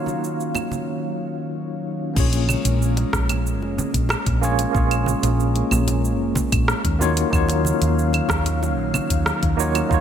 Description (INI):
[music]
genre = sunset chillout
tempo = 93 BPM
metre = 4/4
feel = straight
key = unclear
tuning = A4 = 439 Hz
[part]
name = barky tine electric piano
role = accompaniment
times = 0.0-10.0 s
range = Bb3 to Db5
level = -25 LUFS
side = moving between left 5 dB and right 6 dB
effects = fast stereo tremolo, auto-pan, digital delay
[part]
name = airy breathy pad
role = sustained chords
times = 0.0-10.0 s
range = Eb3 to F5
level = -27 LUFS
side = equal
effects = chorus
[part]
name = woody fretless electric bass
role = bass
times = 0.0-10.0 s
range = F1 to Eb2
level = -21 LUFS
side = equal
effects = none
[part]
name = deep house drum kit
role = drums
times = 0.1-10.0 s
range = cabasa, claves, crash cymbal, hi-hat, rim click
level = -27 LUFS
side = right 1 dB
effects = gated reverb
[part]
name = bongos and congas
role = percussion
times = 0.1-9.9 s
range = none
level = -31 LUFS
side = right 3 dB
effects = none
[part]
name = electronic kick drum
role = drums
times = 2.2-10.0 s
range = none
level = -24 LUFS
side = equal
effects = none
[sound]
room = moderate lush hall reverb, RT60 2.8 s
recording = bright 1980s-style digital production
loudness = -18 LUFS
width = side -9 dB against mid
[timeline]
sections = 0.0-2.2 A section; 2.2-10.0 B section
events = break 0.9-2.2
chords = 0.0 Ebm9; 2.2 Bbm7; 7.0 Ebm9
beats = 0.23 0.88 1.52 | 2.17 2.81 3.46 4.10 | 4.75 5.39 6.04 6.68 | 7.33 7.97 8.62 9.26 | 9.91